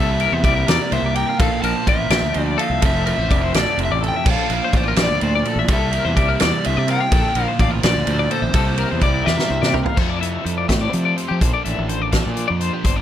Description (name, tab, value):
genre	math rock and midwest emo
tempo	84 BPM (dotted quarters)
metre	6/8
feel	straight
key	F major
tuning	A4 = 440 Hz
part	overdriven semi-hollow guitar	melody	0.0-9.8 s	C5 to A5	-24 LUFS	left 1 dB	tape echo
part	clean electric guitar	accompaniment	0.0-13.0 s	F2 to C5	-28 LUFS	right 5 dB	none
part	twelve-string electric guitar	arpeggios	0.0-13.0 s	G4 to F5	-24 LUFS	left 10 dB	tremolo
part	crunchy overdriven guitar	riff	0.0-13.0 s	F2 to E4	-27 LUFS	right 2 dB	none
part	fuzz fingered electric bass	bass	0.0-13.0 s	F1 to F3	-22 LUFS	equal	overdrive
part	loose indie drum kit	drums	0.2-13.0 s	crash cymbal, hi-hat, kick drum, ride cymbal, snare drum, toms	-20 LUFS	equal	none
room	little or no reverb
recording	none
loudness	-16 LUFS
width	side -10 dB against mid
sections	0.0-10.0 A section; 10.0-13.0 B section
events	drum fill 9.3-10.0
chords	0.0 C7; 1.4 Bbmaj7; 2.8 Fmaj7; 4.3 Bbmaj7; 5.7 C7; 7.1 Bbmaj7; 8.5 C7; 10.0 Fmaj7; 11.4 Bbmaj9